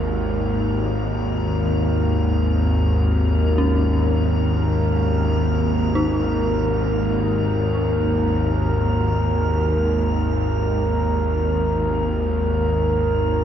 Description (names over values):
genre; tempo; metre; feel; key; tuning
dark ambient drone; free time; none; none; unclear; A4 = 440 Hz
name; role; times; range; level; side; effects
bowed-like drone; drone; 0.0-13.4 s; G#1 to D#2; -19 LUFS; equal; built-in reverb
metallic inharmonic drone; texture; 0.0-13.4 s; A#4; -26 LUFS; right 1 dB; chorus, built-in reverb
dark detuned synth bell; arpeggios; 3.6-13.4 s; C#4 to D#4; -28 LUFS; equal; chorus, tremolo, tape echo
room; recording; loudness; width
wet cathedral reverb, RT60 6.1 s; none; -18 LUFS; side -9 dB against mid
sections
0.0-13.4 A section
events
none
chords
0.0 D#5/G#